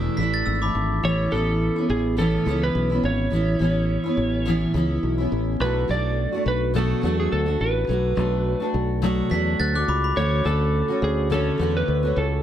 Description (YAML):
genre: acoustic pop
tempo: 105 BPM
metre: 4/4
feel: swing 55% on 16ths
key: A major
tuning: A4 = 440 Hz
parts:
  - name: fingerpicked steel-string acoustic guitar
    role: accompaniment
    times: 0.0-12.4 s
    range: E2 to F#4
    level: -24 LUFS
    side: equal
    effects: double-tracked left and right
  - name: fingered electric bass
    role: bass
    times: 0.0-12.4 s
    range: G#1 to E2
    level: -24 LUFS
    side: equal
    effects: none
  - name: glockenspiel with brass mallets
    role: second line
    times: 0.2-1.0, 9.3-10.3 s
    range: B5 to B6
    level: -28 LUFS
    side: left 1 dB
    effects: none
  - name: electric slide guitar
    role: melody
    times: 1.0-12.4 s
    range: G#4 to D5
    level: -26 LUFS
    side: right 1 dB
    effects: none
room: light reverb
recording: none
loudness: -20 LUFS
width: side -10 dB against mid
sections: 0.0-12.4 A section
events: none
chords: 0.0 E7sus4; 1.0 Aadd9; 5.6 Bm7; 10.2 Dmaj7